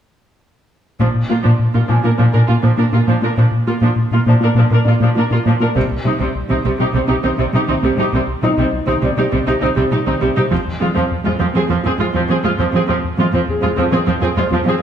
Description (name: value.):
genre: cinematic, hybrid orchestral and electronic film score.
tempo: 101 BPM.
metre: 4/4.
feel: straight.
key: unclear.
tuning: A4 = 442 Hz.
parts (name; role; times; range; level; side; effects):
clear symphonic viola section; accompaniment; 1.0-14.7 s; F3 to Bb4; -19 LUFS; right 1 dB; none.
soft round pluck; arpeggios; 1.0-14.8 s; C3 to Bb4; -23 LUFS; right 2 dB; chorus, tape echo.
rubbery square bass; riff; 1.0-14.8 s; C2 to Bb3; -18 LUFS; left 2 dB; none.
rich symphonic cello section; bass; 1.0-14.7 s; F2 to C3; -19 LUFS; right 2 dB; none.
taiko ensemble; drums; 1.0-2.2, 5.8-6.9, 10.5-11.7 s; none; -32 LUFS; equal; none.
felt-muted upright piano; texture; 1.9-14.8 s; Eb4 to Ab5; -26 LUFS; left 1 dB; tape echo.
room: moderate scoring stage reverb, RT60 1.6 s.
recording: small room reverb.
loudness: -13 LUFS.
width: side -9 dB against mid.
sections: 1.0-14.8 A section.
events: build-up 1.0-14.8.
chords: 1.0 Bb; 5.8 Cm; 10.5 Fm.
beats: | 1.00 1.60 2.19 2.79 | 3.38 3.97 4.57 5.16 | 5.76 6.35 6.95 7.54 | 8.13 8.73 9.32 9.91 | 10.51 11.10 11.70 12.29 | 12.88 13.48 14.07 14.67.